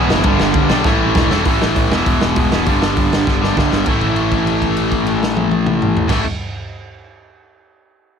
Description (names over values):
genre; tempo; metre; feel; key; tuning
punk rock; 199 BPM; 4/4; straight; A mixolydian; A4 = 440 Hz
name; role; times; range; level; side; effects
distorted electric guitar; riff; 0.0-6.2 s; E2 to A3; -18 LUFS; left 14 dB; overdrive
distorted electric guitar; riff; 0.0-6.2 s; G2 to E4; -19 LUFS; right 15 dB; distortion
fuzz picked electric bass; bass; 0.0-6.2 s; E1 to B1; -22 LUFS; equal; overdrive
raw garage drum kit; drums; 0.1-6.2 s; crash cymbal, hi-hat, kick drum, ride cymbal, snare drum, toms; -18 LUFS; equal; none
room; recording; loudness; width
little or no reverb; none; -13 LUFS; side -7 dB against mid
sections
0.0-1.5 A section; 1.5-3.9 B section; 3.9-6.3 C section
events
drum fill 0.9-1.5, 3.3-3.9; held note 3.9-6.1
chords
0.3 G; 0.9 A; 1.9 E; 2.7 G; 3.9 A